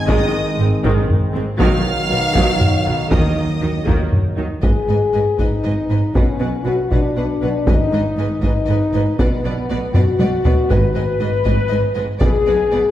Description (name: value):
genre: cinematic, epic orchestral film score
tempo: 79 BPM (dotted quarters)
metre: 6/8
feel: straight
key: Eb minor, G# minor from 4.6 s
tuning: A4 = 440 Hz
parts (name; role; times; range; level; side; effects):
- rich symphonic violin section; melody; 0.0-12.8 s; F#5 to F6; -30 LUFS; right 1 dB; none
- rich symphonic violin section; second line; 0.0-12.8 s; B4 to F5; -28 LUFS; left 1 dB; none
- bright trombone section; sustained chords; 0.0-4.3 s; Eb3 to Ab3; -25 LUFS; right 2 dB; none
- warm French horn section; sustained chords; 0.0-12.9 s; Bb3 to B4; -20 LUFS; left 3 dB; none
- warm symphonic viola section; accompaniment; 0.1-12.8 s; Eb3 to B4; -26 LUFS; right 1 dB; none
- clear symphonic cello section; bass; 0.1-12.8 s; Ab2 to Eb3; -25 LUFS; right 2 dB; none
- rich studio double bass section; bass; 0.1-12.8 s; Ab1 to Eb2; -23 LUFS; right 2 dB; none
- solo taiko drums; drums; 0.1-12.7 s; none; -19 LUFS; equal; none
- timpani; percussion; 3.1-3.8, 7.7-8.4, 10.7-11.4 s; G#2 to Eb3; -27 LUFS; equal; none
room: wet recital hall reverb, RT60 1.5 s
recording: heard from further back in the room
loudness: -15 LUFS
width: side -12 dB against mid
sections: 0.0-4.6 A section; 4.6-12.9 B section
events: drum fill 9.9-10.7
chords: 0.0 Ab; 1.6 B; 3.1 Ebm; 4.6 G#m; 6.2 Bm; 7.7 G#m; 9.2 Bm; 10.7 G#m; 12.2 Bm